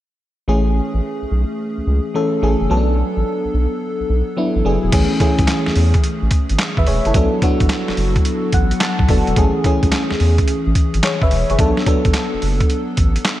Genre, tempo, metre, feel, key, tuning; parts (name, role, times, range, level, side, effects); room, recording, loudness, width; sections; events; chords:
R&B, new jack swing; 108 BPM; 4/4; swing 67% on 16ths; A4 = 439 Hz
FM electric piano with soft pad layer; accompaniment; 0.5-13.4 s; E3 to A5; -19 LUFS; left 1 dB; chorus
round analog bass; bass; 0.5-13.2 s; E1 to E2; -17 LUFS; equal
boom bap sampler-style drum kit; drums; 4.9-13.4 s; crash cymbal, handclaps, hi-hat, kick drum, snare drum; -17 LUFS; equal
light reverb, digital ambience; dark, warm production; -14 LUFS; side -14 dB against mid
0.5-4.9 A section; 4.9-13.4 B section
FM electric piano fill 8.3-9.4
0.5 Amaj7; 2.7 Bm7; 4.9 Amaj7; 7.1 Bm7; 9.4 Amaj7; 11.6 Bm7